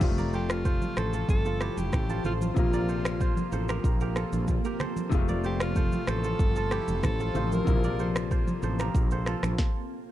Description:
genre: afrobeats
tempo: 94 BPM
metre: 4/4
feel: straight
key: F major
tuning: A4 = 440 Hz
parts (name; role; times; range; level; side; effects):
- bright grand piano; accompaniment; 0.0-9.6 s; C3 to F4; -33 LUFS; left 4 dB; none
- granular cloud pad; sustained chords; 1.0-9.6 s; F3 to C5; -37 LUFS; equal; built-in reverb
- kora; riff; 0.0-10.1 s; E4 to D5; -36 LUFS; right 7 dB; tape echo
- woody fretless electric bass; bass; 0.0-9.6 s; F1 to Bb1; -30 LUFS; equal; none
- afro-pop drum kit; drums; 0.0-9.7 s; crash cymbal, finger snaps, kick drum, rim click, shaker, snare drum; -28 LUFS; equal; none
- congas; percussion; 0.0-9.6 s; none; -35 LUFS; right 2 dB; none
- bright alto saxophone; melody; 0.3-8.2 s; F4 to Bb4; -35 LUFS; equal; tape echo
room: light reverb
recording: dark, warm production, faint mains hum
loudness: -25 LUFS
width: side -13 dB against mid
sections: 0.0-10.1 A section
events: stop 9.6-10.1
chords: 0.0 F; 2.6 Bbsus2; 5.1 F; 7.7 Bbsus2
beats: | 0.01 0.65 1.29 1.93 | 2.56 3.20 3.84 4.48 | 5.12 5.76 6.39 7.03 | 7.67 8.31 8.95 9.59

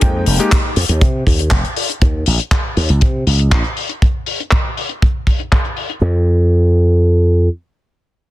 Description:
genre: nu-disco, nu disco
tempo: 120 BPM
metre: 4/4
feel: straight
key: unclear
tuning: A4 = 440 Hz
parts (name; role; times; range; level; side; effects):
- clear electric grand piano; accompaniment; 0.0-0.5 s; Ab3 to G5; -20 LUFS; left 2 dB; sidechain pumping, dub echo
- slap bass with an envelope filter; bass; 0.0-7.5 s; F1 to C3; -13 LUFS; equal; none
- kick drum; drums; 0.0-5.6 s; none; -14 LUFS; equal; none
- tight funk drum kit; drums; 0.0-6.0 s; handclaps, hi-hat; -20 LUFS; left 3 dB; low-pass filter on hats, low-pass filter on toms, low-pass filter on cymbals, low-pass filter on snare, low-pass filter on perc, low-pass filter on room
room: studio reverb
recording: dense, heavily limited modern master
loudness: -13 LUFS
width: side -16 dB against mid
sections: 0.0-6.0 A section; 6.0-8.3 B section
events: filter sweep on drum 0.0-6.0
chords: 0.0 Fm11; 1.8 Eb5; 6.0 N.C.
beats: | 0.02 0.52 1.02 1.52 | 2.02 2.52 3.02 3.52 | 4.02 4.52 5.02 5.52 | 6.02 6.52 7.02

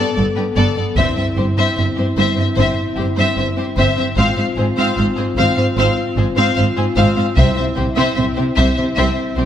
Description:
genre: cinematic, epic orchestral film score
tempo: 75 BPM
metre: 4/4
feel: straight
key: C major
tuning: A4 = 438 Hz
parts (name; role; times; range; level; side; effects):
- warm symphonic violin section; melody; 0.0-9.4 s; B4 to F5; -21 LUFS; left 4 dB; none
- warm symphonic violin section; second line; 0.0-9.5 s; G4 to C5; -25 LUFS; left 4 dB; none
- dark symphonic viola section; accompaniment; 0.0-9.4 s; B3 to C4; -24 LUFS; right 1 dB; none
- dark French horn section; sustained chords; 0.0-9.5 s; B3 to A4; -23 LUFS; left 3 dB; none
- warm symphonic cello section; bass; 0.0-9.5 s; G2 to C3; -20 LUFS; right 2 dB; none
- warm studio double bass section; bass; 0.2-9.5 s; G1 to C2; -21 LUFS; right 2 dB; none
- taiko ensemble; drums; 1.0-2.5, 7.4-8.9 s; none; -20 LUFS; equal; none
room: moderate concert hall reverb, RT60 2.2 s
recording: none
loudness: -14 LUFS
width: side -10 dB against mid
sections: 0.0-9.5 A section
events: build-up 0.0-9.5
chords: 0.0 Gadd9; 1.0 C/G; 4.2 Fm/Ab; 7.4 C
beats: 0.17 | 0.97 1.77 2.57 3.37 | 4.17 4.97 5.77 6.57 | 7.37 8.17 8.97

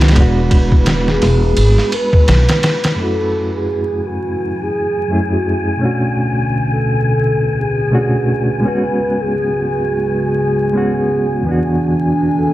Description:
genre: trip hop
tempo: 85 BPM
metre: 4/4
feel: swing 59% on 16ths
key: F# minor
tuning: A4 = 436 Hz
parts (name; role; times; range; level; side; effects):
- reed electric piano; accompaniment; 0.0-12.5 s; E2 to G#4; -18 LUFS; equal; fast tremolo, low-pass filter
- upright bass; bass; 0.0-2.5 s; E1 to C#2; -13 LUFS; equal; none
- trip hop sampler-style drum kit; drums; 0.0-3.0 s; kick drum, ride cymbal, snare drum; -14 LUFS; equal; studio reverb
- wind-like tuned noise texture; texture; 0.0-12.5 s; B4 to G#5; -25 LUFS; left 1 dB; built-in reverb
- pure breathy sine lead; melody; 1.1-12.5 s; F#4 to B4; -20 LUFS; equal; chorus, tape echo
- dark analog pad; sustained chords; 3.0-12.5 s; B2 to G#5; -20 LUFS; equal; chorus
room: light reverb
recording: vinyl crackle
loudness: -13 LUFS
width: side -15 dB against mid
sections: 0.0-3.0 A section; 3.0-12.5 B section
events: filter sweep on reed electric piano 3.0-12.5; filter sweep on analog synth pad 3.0-12.5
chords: 0.2 E7; 3.0 F#m7; 5.8 Bm7; 8.6 C#7sus4; 11.4 E7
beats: | 0.15 0.86 1.57 2.27 | 2.98 3.68 4.39 5.09 | 5.80 6.51 7.21 7.92 | 8.62 9.33 10.04 10.74 | 11.45 12.15

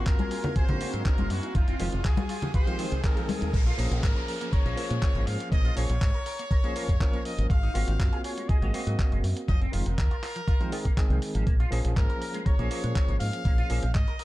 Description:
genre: nu-disco, nu disco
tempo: 121 BPM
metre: 4/4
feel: straight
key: Bb minor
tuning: A4 = 444 Hz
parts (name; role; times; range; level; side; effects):
- bright trumpet section; melody; 0.0-14.2 s; F4 to F5; -37 LUFS; left 2 dB; low-pass filter, tape echo
- overdriven tine electric piano; accompaniment; 0.0-13.8 s; Eb3 to Bb4; -35 LUFS; equal; fast tremolo, sidechain pumping
- lush unison pad; sustained chords; 0.0-3.5 s; Ab4 to Eb6; -43 LUFS; left 1 dB; chorus, phaser, sidechain pumping
- fingered electric bass with an envelope filter; bass; 0.0-14.0 s; F1 to Bb2; -28 LUFS; equal; sidechain pumping
- riser and downlifter; sound effects; 0.0-7.5 s; none; -40 LUFS; equal; none
- dusty soul sampler-style drum kit; drums; 0.1-14.2 s; crash cymbal, handclaps, hi-hat; -40 LUFS; equal; none
- electronic kick drum; drums; 0.1-14.1 s; none; -25 LUFS; equal; none
- electric guitar with an envelope filter; riff; 0.2-14.2 s; C3 to Bb4; -39 LUFS; right 3 dB; ensemble chorus
- congas; percussion; 0.2-3.4 s; none; -32 LUFS; left 3 dB; none
room: little or no reverb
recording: dark, warm production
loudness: -24 LUFS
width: side -17 dB against mid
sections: 0.0-3.5 A section; 3.5-14.2 B section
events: build-up 0.0-3.5; riser 0.0-3.5; filter sweep on trumpet section 0.0-3.5; drop 3.5-14.2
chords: 0.0 Ab13; 1.6 Fm7; 3.5 Bbm7; 7.5 Ab13; 9.5 Fm7; 11.5 Bbm7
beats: 0.06 0.56 1.06 | 1.55 2.05 2.54 3.04 | 3.54 4.03 4.53 5.02 | 5.52 6.01 6.51 7.01 | 7.50 8.00 8.49 8.99 | 9.48 9.98 10.48 10.97 | 11.47 11.96 12.46 12.96 | 13.45 13.95

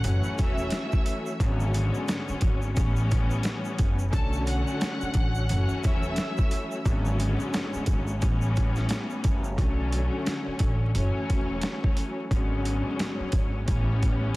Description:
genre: hip hop, boom-bap hip-hop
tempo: 88 BPM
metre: 4/4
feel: swing 59% on 16ths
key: B minor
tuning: A4 = 442 Hz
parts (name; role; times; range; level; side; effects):
- clear studio violin section; melody; 0.0-6.8 s; A4 to F#6; -36 LUFS; right 1 dB; high-pass filter, low-pass filter, tape echo
- dark studio string section; accompaniment; 0.0-14.4 s; G#2 to C#4; -30 LUFS; left 1 dB; high-pass filter, low-pass filter
- upright bass; bass; 0.0-14.3 s; E1 to B1; -27 LUFS; equal; none
- boom bap sampler-style drum kit; drums; 0.0-14.2 s; hi-hat, kick drum, snare drum; -26 LUFS; equal; overdrive
- tube shaker; percussion; 0.0-9.6 s; none; -50 LUFS; right 4 dB; none
room: small room ambience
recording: dense, heavily limited modern master, vinyl crackle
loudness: -24 LUFS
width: side -20 dB against mid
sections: 0.0-9.6 A section; 9.6-14.4 B section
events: none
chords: 0.0 F#m7; 1.4 Bm69/G#; 2.8 A9; 4.1 Bm9; 5.5 F#m7; 6.9 Bm69/G#; 8.2 A9; 9.6 Bm9; 10.9 F#m7; 12.3 Bm69/G#; 13.7 A9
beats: 0.04 0.72 | 1.40 2.08 2.76 3.45 | 4.13 4.81 5.49 6.17 | 6.86 7.54 8.22 8.90 | 9.58 10.26 10.95 11.63 | 12.31 12.99 13.67 14.36

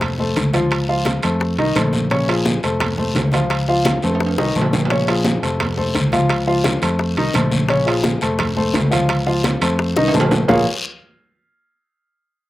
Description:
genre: Afro-Cuban jazz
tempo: 172 BPM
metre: 4/4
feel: straight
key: Bb minor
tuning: A4 = 439 Hz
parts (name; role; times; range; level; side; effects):
- warm baby grand piano; accompaniment; 0.0-10.7 s; Db3 to F5; -19 LUFS; left 1 dB; slapback echo
- fingered electric bass; bass; 0.0-10.6 s; F1 to F2; -21 LUFS; equal; none
- bongos; percussion; 0.0-10.6 s; none; -24 LUFS; left 3 dB; slapback echo
- congas; percussion; 0.0-10.6 s; none; -24 LUFS; equal; none
- guiro; percussion; 0.0-10.6 s; none; -29 LUFS; left 3 dB; none
- timbales; percussion; 0.0-10.6 s; none; -25 LUFS; right 5 dB; slapback echo
room: little or no reverb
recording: recorded outdoors, with no room sound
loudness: -15 LUFS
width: side -16 dB against mid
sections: 0.0-10.5 A section; 10.5-11.9 B section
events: drum fill 4.0-4.9, 10.0-10.5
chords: 0.0 F; 0.7 Dbmaj7; 1.4 F7; 2.1 Bbm7; 2.8 F; 3.5 Dbmaj7; 4.2 F7; 4.9 Bbm7; 5.6 F; 6.3 Dbmaj7; 7.0 F7; 7.7 Bbm7; 8.4 F; 9.1 Dbmaj7; 9.8 F7; 10.5 Bbm7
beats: 0.01 0.36 | 0.71 1.06 1.41 1.76 | 2.11 2.46 2.81 3.16 | 3.51 3.86 4.21 4.56 | 4.91 5.26 5.61 5.95 | 6.30 6.65 7.00 7.35 | 7.70 8.05 8.39 8.74 | 9.09 9.44 9.79 10.14 | 10.49

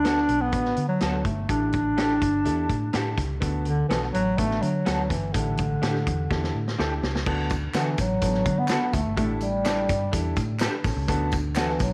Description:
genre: uptempo 1960s-style soul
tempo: 125 BPM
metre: 4/4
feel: straight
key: D major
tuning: A4 = 440 Hz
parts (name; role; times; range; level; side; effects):
- breathy bass clarinet; melody; 0.0-11.9 s; D3 to D4; -28 LUFS; equal; slapback echo
- clear upright piano; accompaniment; 0.0-11.8 s; A2 to B4; -35 LUFS; equal; none
- electric guitar through a small old amp; stabs; 0.0-11.7 s; B3 to A4; -37 LUFS; equal; ensemble chorus
- vintage muted fingered electric bass; bass; 0.0-11.9 s; G1 to D3; -31 LUFS; equal; none
- vintage drum kit; drums; 0.0-11.9 s; crash cymbal, hi-hat, kick drum, snare drum; -32 LUFS; equal; none
- tambourine and handclaps; percussion; 7.5-11.9 s; none; -40 LUFS; equal; none
room: moderate echo chamber reverb, RT60 2.3 s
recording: none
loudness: -25 LUFS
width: mono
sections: 0.0-7.3 A section; 7.3-11.9 B section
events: drum fill 6.3-7.3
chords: 0.0 D6; 1.5 A7sus4; 3.4 D6; 5.3 A7sus4; 7.3 D6; 9.2 A7sus4; 11.1 D6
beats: 0.04 0.53 1.01 | 1.49 1.97 2.46 2.94 | 3.42 3.90 4.38 4.86 | 5.34 5.82 6.30 6.78 | 7.26 7.74 8.22 8.70 | 9.18 9.65 10.13 10.61 | 11.08 11.56

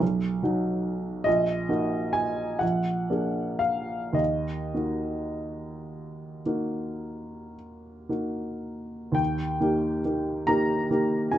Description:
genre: classical, romantic nocturne for solo piano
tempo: 34-49 BPM (dotted quarters)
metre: 9/8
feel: rubato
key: Eb minor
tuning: A4 = 439 Hz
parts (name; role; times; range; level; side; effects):
- warm upright piano; solo; 0.0-11.4 s; Bb1 to Bb5; -25 LUFS; equal; none
room: moderate studio reverb, RT60 0.8 s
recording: nothing above 8.0 kHz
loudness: -25 LUFS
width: side -12 dB against mid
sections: 0.0-9.2 A section; 9.2-11.4 B section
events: none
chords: 0.0 B; 1.3 Ebm/Bb; 2.6 Bb7; 4.2 Ebm; 9.2 Eb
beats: | 0.01 1.26 2.62 | 4.18 5.92 7.56 | 9.19 10.49

